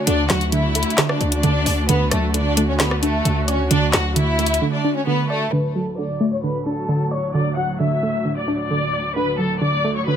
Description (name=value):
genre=hip hop, trap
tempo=132 BPM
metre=4/4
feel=half-time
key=D major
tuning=A4 = 440 Hz
part: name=rich studio violin section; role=melody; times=0.0-10.2 s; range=A3 to F#6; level=-22 LUFS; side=left 2 dB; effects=low-pass filter
part: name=warbly dusty pluck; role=accompaniment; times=0.0-10.2 s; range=D3 to D5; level=-22 LUFS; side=right 2 dB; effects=chorus, low-pass filter
part: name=muted chamber string section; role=sustained chords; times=0.0-10.2 s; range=D2 to F#4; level=-27 LUFS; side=right 1 dB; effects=low-pass filter
part: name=distorted 808-style bass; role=bass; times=0.1-4.6 s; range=D2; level=-22 LUFS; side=left 1 dB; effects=distortion
part: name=trap drum kit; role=drums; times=0.1-4.6 s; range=handclaps, hi-hat, rim click, snare drum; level=-21 LUFS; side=left 1 dB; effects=none
room=small room ambience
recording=none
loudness=-17 LUFS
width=side -9 dB against mid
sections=0.0-5.5 A section; 5.5-10.2 B section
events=break 4.6-5.5; filter sweep 5.5-10.2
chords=0.0 D